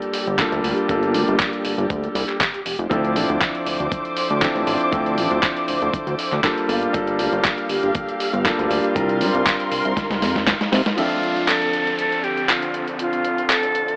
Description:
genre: nu-disco, nu disco.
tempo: 119 BPM.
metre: 4/4.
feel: swing 54% on 16ths.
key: D minor.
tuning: A4 = 440 Hz.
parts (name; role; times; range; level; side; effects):
bright grand piano; accompaniment; 0.0-14.0 s; F3 to E5; -23 LUFS; equal; tape echo.
rich studio string section; sustained chords; 0.0-14.0 s; D3 to D6; -26 LUFS; equal; sidechain pumping, low-pass filter.
dusty soul sampler-style drum kit; drums; 0.0-14.0 s; crash cymbal, handclaps, hi-hat, snare drum; -22 LUFS; equal; overdrive.
chorused synth bass; bass; 0.3-10.8 s; F1 to C3; -24 LUFS; equal; none.
electronic kick drum; drums; 0.4-10.6 s; none; -28 LUFS; equal; overdrive.
breathy bright jazz flute; melody; 11.0-14.0 s; F4 to A4; -21 LUFS; equal; dub echo.
downlifter; sound effects; 11.0-14.0 s; none; -29 LUFS; equal; none.
room: light reverb.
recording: AM radio sound.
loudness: -18 LUFS.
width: side -30 dB against mid.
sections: 0.0-11.0 A section; 11.0-14.0 B section.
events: drum fill 10.0-11.0; band accent 10.8; filter sweep on string section 11.0-14.0.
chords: 0.0 Gm7; 2.9 Dm7; 6.7 Gm7; 9.0 C7sus4; 11.0 Dm7.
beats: 0.39 | 0.89 1.40 1.90 2.40 | 2.91 3.41 3.92 4.42 | 4.92 5.43 5.93 6.44 | 6.94 7.45 7.95 8.46 | 8.96 9.46 9.97 10.47 | 10.98 11.48 11.98 12.49 | 12.99 13.50.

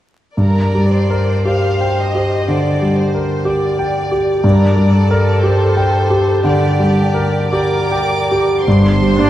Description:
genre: classical, romantic movement for piano and orchestra.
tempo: 49-61 BPM.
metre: 4/4.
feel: rubato.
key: G minor.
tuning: A4 = 440 Hz.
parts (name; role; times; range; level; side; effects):
clear grand piano; melody; 0.4-9.3 s; G2 to G5; -13 LUFS; equal; none.
rich chamber violin section; second line; 0.4-9.3 s; G4 to F5; -21 LUFS; equal; none.
rich chamber violin section; melody; 7.5-9.3 s; C6 to D6; -23 LUFS; equal; none.
rich chamber double bass section; bass; 8.7-9.3 s; G1; -18 LUFS; right 1 dB; none.
rich studio cello section; bass; 8.7-9.3 s; G2; -16 LUFS; right 3 dB; none.
rich chamber viola section; accompaniment; 9.2-9.3 s; Bb3 to D4; -14 LUFS; right 4 dB; none.
room: moderate concert hall reverb, RT60 2.5 s.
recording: dark, warm production, vinyl crackle.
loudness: -12 LUFS.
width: side -13 dB against mid.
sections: 0.4-8.7 A section.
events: none.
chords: 0.4 Gm.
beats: | 0.36 1.45 2.47 3.45 | 4.44 5.42 6.43 7.51 | 8.66.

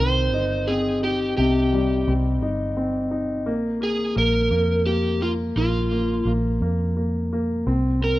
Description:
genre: pop.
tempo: 57 BPM (dotted quarters).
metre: 6/8.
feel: straight.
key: C minor.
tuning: A4 = 436 Hz.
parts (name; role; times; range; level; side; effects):
overdriven slide guitar; melody; 0.0-8.2 s; F4 to C5; -24 LUFS; equal; none.
clear concert grand piano; accompaniment; 0.0-8.2 s; C3 to Eb4; -24 LUFS; left 1 dB; none.
vintage muted fingered electric bass; bass; 0.0-8.2 s; G1 to F2; -24 LUFS; equal; none.
room: light reverb, small room ambience.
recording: rough home demo mix.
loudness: -20 LUFS.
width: side -16 dB against mid.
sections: 0.0-8.2 A section.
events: none.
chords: 0.0 Cm; 3.5 Bb5; 7.7 C5.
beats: 0.33 | 1.38 2.42 | 3.47 4.51 | 5.56 6.61 | 7.67.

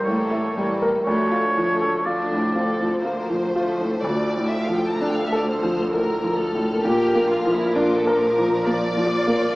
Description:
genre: classical, romantic movement for piano and orchestra.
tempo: 59-68 BPM.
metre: 3/4.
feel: rubato.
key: D minor.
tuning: A4 = 441 Hz.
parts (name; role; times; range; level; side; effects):
clear baby grand piano; melody; 0.0-9.6 s; D2 to Bb4; -22 LUFS; equal; none.
clear oboe; second line; 0.0-3.0 s; C#5 to D5; -25 LUFS; right 1 dB; none.
warm symphonic violin section; second line; 0.0-9.5 s; A3 to Bb5; -27 LUFS; left 1 dB; none.
warm studio viola section; accompaniment; 0.0-9.6 s; D3 to Bb4; -28 LUFS; right 1 dB; none.
warm symphonic cello section; bass; 0.1-9.5 s; D2 to Bb2; -30 LUFS; right 1 dB; none.
rich symphonic violin section; melody; 4.0-9.5 s; D6 to F6; -38 LUFS; left 1 dB; none.
dark French horn section; sustained chords; 4.0-7.2 s; A3 to F4; -25 LUFS; left 1 dB; none.
rich symphonic double bass section; bass; 4.0-9.6 s; Bb1 to D2; -35 LUFS; right 1 dB; none.
timpani; percussion; 4.0-5.4 s; D3; -37 LUFS; equal; none.
room: moderate recital hall reverb, RT60 1.4 s.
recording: small speaker sound.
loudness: -19 LUFS.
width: side -20 dB against mid.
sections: 0.0-4.0 A section; 4.0-9.6 A section.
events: none.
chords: 0.1 A7b9; 1.1 Dm; 6.8 Bb.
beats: 0.06 | 1.06 2.06 3.04 | 4.03 5.00 5.93 | 6.84 7.75 8.65 | 9.55.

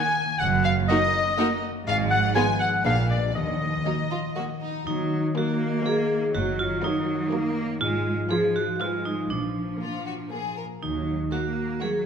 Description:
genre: cinematic, playful, whimsical film cue.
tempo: 121 BPM.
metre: 3/4.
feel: straight.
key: Eb minor.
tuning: A4 = 440 Hz.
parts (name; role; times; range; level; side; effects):
rich chamber violin section; melody; 0.0-11.9 s; Bb4 to Ab5; -32 LUFS; left 3 dB; none.
clear clarinet; second line; 0.0-4.6 s; D5 to Ab5; -25 LUFS; left 2 dB; none.
concert harp; arpeggios; 0.0-12.1 s; Gb2 to Eb5; -31 LUFS; left 6 dB; none.
clear studio cello section; bass; 0.4-12.1 s; Eb2 to Bb3; -31 LUFS; right 4 dB; none.
warm chamber double bass section; bass; 0.4-11.2 s; Gb1 to Eb2; -30 LUFS; right 5 dB; none.
clear chamber violin section; second line; 0.9-11.9 s; Bb3 to Cb5; -34 LUFS; left 2 dB; none.
rich chamber viola section; accompaniment; 0.9-11.9 s; F3 to Eb4; -32 LUFS; right 2 dB; none.
vibraphone with hard mallets; melody; 4.9-12.1 s; D4 to Ab4; -27 LUFS; right 2 dB; none.
room: wet scoring stage reverb, RT60 1.5 s.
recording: minimal, uncompressed stereo recording.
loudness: -22 LUFS.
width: side -7 dB against mid.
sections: 0.0-4.9 A section; 4.9-12.1 B section.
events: none.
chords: 0.4 Ebm/Gb; 1.9 Fdim/Ab; 2.9 Bb7b9; 3.4 Ebm; 6.3 Ebm/Gb; 7.8 Fdim/Ab; 9.3 Bb; 10.8 Ebm.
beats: | 0.40 0.90 1.39 | 1.87 2.36 2.85 | 3.35 3.86 4.36 | 4.87 5.36 5.85 | 6.34 6.83 7.31 | 7.80 8.30 8.80 | 9.30 9.81 10.31 | 10.82 11.32 11.81.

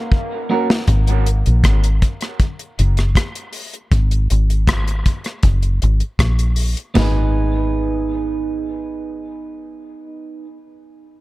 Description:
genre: dub reggae.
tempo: 79 BPM.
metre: 4/4.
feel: straight.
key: G# minor.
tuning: A4 = 440 Hz.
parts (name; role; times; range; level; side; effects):
deep reggae drum kit; drums; 0.1-7.1 s; hi-hat, kick drum, rim click, snare drum, splash cymbal, toms; -18 LUFS; equal; none.
electric guitar at the edge of break-up; accompaniment; 0.5-0.7, 6.9-10.5 s; A#3 to B4; -23 LUFS; right 4 dB; dub echo.
deep dub fingered electric bass; bass; 0.9-9.9 s; F#1 to A#1; -16 LUFS; equal; none.
room: little or no reverb.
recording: echo-heavy mix.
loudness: -15 LUFS.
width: side -18 dB against mid.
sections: 0.9-7.0 A section; 7.0-10.0 B section.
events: break 0.0-0.9; drum fill 0.1-0.9.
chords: 0.0 F#; 0.9 N.C.; 5.4 F#; 7.0 G#m.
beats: 0.12 | 0.88 1.64 2.40 3.16 | 3.92 4.67 5.43 6.19 | 6.95 7.71 8.47 9.23.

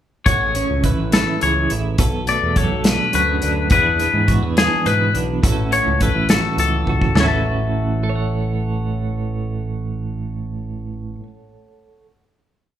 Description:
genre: math rock and midwest emo.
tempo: 70 BPM (dotted quarters).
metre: 6/8.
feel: straight.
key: A major.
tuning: A4 = 440 Hz.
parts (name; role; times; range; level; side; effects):
twelve-string electric guitar; accompaniment; 0.3-12.2 s; E2 to F#5; -23 LUFS; right 3 dB; tremolo.
twangy electric guitar; arpeggios; 0.3-11.3 s; G#4 to A5; -20 LUFS; left 5 dB; none.
overdriven picked electric bass; bass; 0.3-11.1 s; A1 to G#2; -22 LUFS; equal; none.
loose indie drum kit; drums; 0.3-7.3 s; hi-hat, kick drum, snare drum, toms; -19 LUFS; equal; none.
room: moderate large studio reverb, RT60 1.2 s.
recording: band playing live in one room.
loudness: -16 LUFS.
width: side -10 dB against mid.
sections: 0.3-7.2 A section; 7.2-10.6 final chord.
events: drum fill 6.9.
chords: 0.3 Amaj7; 2.0 Bm7; 3.7 E7; 5.4 A6.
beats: | 0.26 1.12 | 1.98 2.84 | 3.70 4.57 | 5.43 6.29 | 7.16 8.02 | 8.89 9.75.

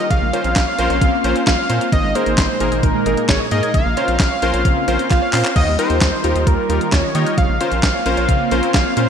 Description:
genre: synth-pop.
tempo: 132 BPM.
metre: 4/4.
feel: straight.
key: Bb dorian.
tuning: A4 = 441 Hz.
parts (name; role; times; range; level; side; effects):
fat analog lead; melody; 0.0-9.1 s; Bb4 to F5; -20 LUFS; equal; digital delay.
warm analog keys; accompaniment; 0.0-9.1 s; Bb3 to Db5; -22 LUFS; left 2 dB; chorus.
phased analog pad; sustained chords; 0.0-9.1 s; Bb2 to F4; -24 LUFS; right 1 dB; phaser, chorus.
wide unison pluck; arpeggios; 0.0-9.1 s; Db3 to Ab6; -26 LUFS; right 4 dB; analog chorus.
round analog bass; bass; 0.1-9.1 s; Ab1 to Eb3; -21 LUFS; equal; none.
clean 12-bit digital drum machine; drums; 0.1-9.1 s; crash cymbal, handclaps, hi-hat, kick drum, snare drum; -18 LUFS; equal; gated reverb.
room: moderate lush hall reverb, RT60 2.1 s.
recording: bright 1980s-style digital production.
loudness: -14 LUFS.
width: side -7 dB against mid.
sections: 0.0-9.1 A section.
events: drum fill 5.1-5.6.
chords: 0.1 Bbmadd9; 1.9 Absus2; 3.7 Bbmadd9; 5.6 Ebadd9; 7.4 Bbmadd9.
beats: | 0.11 0.56 1.01 1.47 | 1.92 2.38 2.83 3.29 | 3.74 4.20 4.65 5.11 | 5.56 6.01 6.47 6.92 | 7.38 7.83 8.29 8.74.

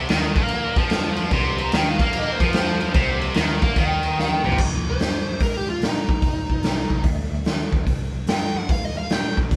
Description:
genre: blues rock power trio and southern rock.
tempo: 146 BPM.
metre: 4/4.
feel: swing 66% on 8ths.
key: C minor.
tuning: A4 = 438 Hz.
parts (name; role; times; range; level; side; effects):
distorted electric guitar; riff; 0.0-4.6 s; C3 to Bb3; -26 LUFS; equal; overdrive.
vintage muted picked electric bass; bass; 0.0-9.6 s; F1 to Bb2; -31 LUFS; equal; none.
raw garage drum kit; drums; 0.1-9.6 s; crash cymbal, hi-hat, kick drum, snare drum, toms; -24 LUFS; equal; none.
dark smooth lead guitar; second line; 1.3-4.6 s; C5 to C6; -29 LUFS; equal; overdrive.
smooth overdriven lead guitar; melody; 4.9-9.4 s; Eb4 to G5; -30 LUFS; equal; none.
room: light reverb.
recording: band playing live in one room.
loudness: -22 LUFS.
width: mono.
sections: 0.0-4.6 A section; 4.6-9.6 B section.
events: lead electric guitar solo 0.0-4.6; drum fill 4.2-4.6.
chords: 0.0 Cm; 4.6 Cm7; 6.2 F5; 7.9 C5.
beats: 0.10 0.51 0.92 | 1.32 1.73 2.14 2.55 | 2.96 3.37 3.78 4.19 | 4.60 5.01 5.42 5.83 | 6.24 6.65 7.06 7.47 | 7.88 8.29 8.70 9.11 | 9.52.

